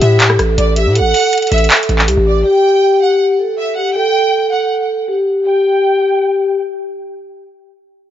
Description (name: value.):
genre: hip hop, trap.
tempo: 160 BPM.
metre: 4/4.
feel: half-time.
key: unclear.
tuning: A4 = 440 Hz.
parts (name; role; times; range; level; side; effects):
vibraphone with soft mallets; melody; 0.0-6.5 s; G4 to A4; -13 LUFS; left 1 dB; low-pass filter, digital delay.
rich studio violin section; second line; 0.0-6.5 s; D5 to G5; -18 LUFS; right 3 dB; digital delay.
distorted 808-style bass; bass; 0.0-2.4 s; A1 to A2; -14 LUFS; equal; distortion.
trap drum kit; drums; 0.0-2.2 s; handclaps, hi-hat, rim click; -14 LUFS; equal; none.
room: moderate scoring stage reverb, RT60 1.9 s, small room ambience.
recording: low-pass filter, nothing above 7.6 kHz.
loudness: -11 LUFS.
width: side -11 dB against mid.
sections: 0.0-2.5 A section; 2.5-5.5 B section; 5.5-8.1 C section.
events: none.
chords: 0.0 A5; 2.5 N.C..